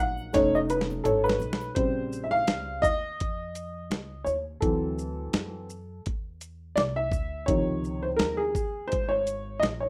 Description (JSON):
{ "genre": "hip hop, jazz-hop", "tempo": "84 BPM", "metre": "4/4", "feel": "swing 58% on 16ths", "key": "unclear", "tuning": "A4 = 437 Hz", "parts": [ { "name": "dark upright piano", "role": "accompaniment", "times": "0.0-9.9 s", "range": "C3 to Gb5", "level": "-29 LUFS", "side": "equal", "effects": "none" }, { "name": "upright bass", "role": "bass", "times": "0.0-9.9 s", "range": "F1 to F#2", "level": "-39 LUFS", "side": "equal", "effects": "none" }, { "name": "egg shaker and congas", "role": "percussion", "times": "0.2-1.8 s", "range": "none", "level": "-46 LUFS", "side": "equal", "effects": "none" }, { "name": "dusty soul sampler-style drum kit", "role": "drums", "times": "0.3-9.8 s", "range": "hi-hat, kick drum, shaker, snare drum, toms", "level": "-33 LUFS", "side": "equal", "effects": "none" } ], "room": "moderate studio reverb, RT60 0.7 s", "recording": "rough home demo mix", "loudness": "-28 LUFS", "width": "mono", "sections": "0.0-1.8 A section; 1.8-9.9 B section", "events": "upright piano solo 0.0-1.8, 1.8-9.9; drum fill 0.3-1.8", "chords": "0.3 F7alt; 1.8 Bbm69; 4.6 D9; 7.5 Dbmaj9", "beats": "0.34 1.05 | 1.77 2.48 3.20 3.91 | 4.63 5.34 6.05 6.77 | 7.48 8.20 8.91 9.63" }